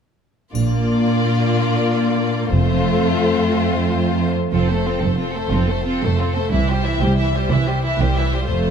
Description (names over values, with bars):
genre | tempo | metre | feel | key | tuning
cinematic, heroic adventure film score | 121 BPM (dotted quarters) | 6/8 | straight | F major | A4 = 440 Hz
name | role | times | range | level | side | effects
rich symphonic violin section | melody | 0.5-8.7 s | A4 to E5 | -26 LUFS | left 4 dB | none
rich chamber violin section | second line | 0.5-8.7 s | E4 to A4 | -26 LUFS | left 2 dB | none
rich symphonic viola section | accompaniment | 0.5-8.7 s | E3 to C4 | -24 LUFS | right 1 dB | none
mellow French horn section | sustained chords | 0.5-4.3 s | A3 to D4 | -22 LUFS | left 7 dB | none
rich studio cello section | bass | 0.5-8.7 s | C2 to Bb2 | -22 LUFS | right 3 dB | none
rich symphonic double bass section | bass | 0.5-8.7 s | F1 to C2 | -21 LUFS | right 2 dB | none
triangle | percussion | 0.6-1.2 s | none | -40 LUFS | left 4 dB | none
timpani | percussion | 2.5-3.0, 6.5-8.7 s | F2 to C3 | -26 LUFS | left 2 dB | none
room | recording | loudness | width
moderate scoring stage reverb, RT60 1.5 s | none | -16 LUFS | side -7 dB against mid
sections
0.5-4.5 A section; 4.5-8.7 B section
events
build-up 4.5-8.7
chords
0.5 Bb; 2.5 F; 6.5 C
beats
| 0.54 1.04 | 1.54 2.04 | 2.53 3.02 | 3.52 4.02 | 4.53 5.03 | 5.53 6.02 | 6.52 7.01 | 7.50 8.00 | 8.49